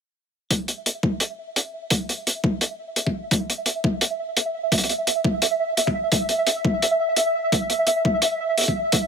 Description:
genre	half-time drum and bass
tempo	171 BPM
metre	4/4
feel	swing 59% on 16ths, half-time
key	unclear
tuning	A4 = 439 Hz
part	electronic kick drum	drums	0.5-9.0 s	none	-22 LUFS	left 1 dB	overdrive, high-pass filter on kick, high-pass filter on room
part	hi-hat	drums	0.5-9.0 s	none	-21 LUFS	equal	none
part	pulsing gated texture	texture	0.5-9.1 s	E5	-24 LUFS	right 2 dB	chorus, built-in reverb
room	light reverb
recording	none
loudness	-20 LUFS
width	side -6 dB against mid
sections	0.5-9.1 A section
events	none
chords	none

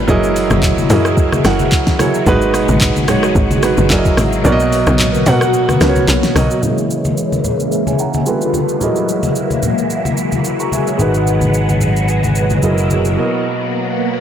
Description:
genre	amapiano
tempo	110 BPM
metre	4/4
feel	swing 55% on 16ths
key	C# dorian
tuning	A4 = 440 Hz
part	dark baby grand piano	accompaniment	0.0-14.2 s	B2 to C#6	-17 LUFS	right 3 dB	low-pass filter
part	phased string machine	sustained chords	0.0-14.2 s	B2 to F#4	-18 LUFS	left 1 dB	ensemble chorus, phaser, sidechain pumping, low-pass filter
part	tight log drum bass	bass	0.0-6.5 s	F#1 to B2	-17 LUFS	left 1 dB	none
part	smooth R&B drum kit	drums	0.1-13.2 s	handclaps, hi-hat, kick drum, rim click, shaker, snare drum	-19 LUFS	equal	none
part	congas	percussion	0.1-13.0 s	none	-20 LUFS	left 2 dB	none
part	fingered electric bass	bass	11.0-13.2 s	F#1 to G#1	-15 LUFS	equal	none
room	light reverb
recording	blown-out, overdriven recording, overdrive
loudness	-12 LUFS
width	side -9 dB against mid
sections	0.0-6.6 A section; 6.6-14.2 B section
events	drop 0.0-6.6; kick muted 4.4-6.6; filter sweep 6.6-14.2; break 13.2-14.2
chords	0.1 F#13; 2.3 G#m7; 3.9 F#13; 4.4 Bmaj7; 6.6 C#m69; 8.3 G9; 8.8 F#13; 11.0 G#m7; 12.6 F#13; 13.2 Bmaj7

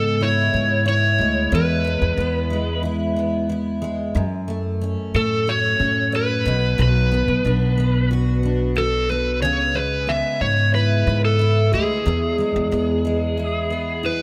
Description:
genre	acoustic pop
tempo	91 BPM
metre	4/4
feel	straight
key	unclear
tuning	A4 = 442 Hz
part	overdriven slide guitar	melody	0.0-14.2 s	G#4 to E5	-24 LUFS	equal	diffuse ambient delay
part	picked steel-string acoustic guitar	accompaniment	0.0-14.2 s	E2 to F#4	-26 LUFS	equal	double-tracked
part	upright bass	bass	0.0-14.2 s	B1 to A2	-24 LUFS	equal	none
room	moderate plate reverb, RT60 3.5 s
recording	dreamy mix soaked in reverb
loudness	-20 LUFS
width	mono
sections	0.0-14.2 A section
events	none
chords	0.0 C#m7; 1.5 E; 4.2 F#m; 6.5 Bm; 9.4 C#m7; 12.1 E

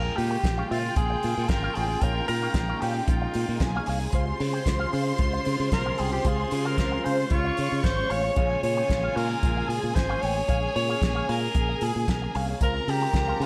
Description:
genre	disco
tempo	113 BPM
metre	4/4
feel	straight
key	Bb dorian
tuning	A4 = 440 Hz
part	breathy alto saxophone	melody	0.0-13.5 s	F4 to Db5	-31 LUFS	equal	slapback echo
part	warm symphonic violin section	second line	0.0-13.5 s	F4 to Db6	-35 LUFS	equal	none
part	electric guitar with an envelope filter	accompaniment	0.0-13.5 s	Ab4 to G5	-38 LUFS	equal	wah
part	dark studio string section	sustained chords	0.0-13.5 s	C3 to Ab4	-37 LUFS	equal	none
part	modern bright fingered electric bass	bass	0.0-13.5 s	Ab1 to Db3	-31 LUFS	equal	none
part	warm soul drum kit	drums	0.2-13.5 s	hi-hat, kick drum, snare drum	-31 LUFS	equal	gated reverb
room	small room reverb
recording	none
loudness	-26 LUFS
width	mono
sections	0.0-13.5 A section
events	none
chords	0.0 Bbm7; 4.1 Dbmaj7; 8.4 Bbm7; 12.6 Dbmaj7

